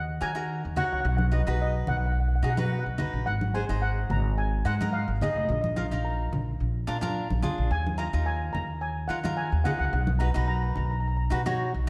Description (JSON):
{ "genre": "calypso", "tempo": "108 BPM", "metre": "4/4", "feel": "straight", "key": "Eb minor", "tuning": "A4 = 440 Hz", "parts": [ { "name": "steel pan", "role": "melody", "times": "0.0-11.2 s", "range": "D#5 to Bb5", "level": "-35 LUFS", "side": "equal", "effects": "none" }, { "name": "upright bass", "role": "bass", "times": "0.0-11.9 s", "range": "F1 to Eb3", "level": "-30 LUFS", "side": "equal", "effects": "none" }, { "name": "cavaquinho", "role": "accompaniment", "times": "0.2-11.9 s", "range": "D4 to Eb5", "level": "-36 LUFS", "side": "equal", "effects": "none" }, { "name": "congas", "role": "percussion", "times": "0.8-11.6 s", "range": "none", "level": "-37 LUFS", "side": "equal", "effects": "none" } ], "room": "moderate scoring stage reverb, RT60 1.9 s", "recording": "dark, warm production", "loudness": "-27 LUFS", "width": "mono", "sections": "0.0-11.9 A section", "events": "none", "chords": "0.0 Ebm; 1.1 B; 3.3 Ab; 5.5 Bbsus4; 6.6 Bb; 7.7 Ebsus2; 9.9 Bmaj7" }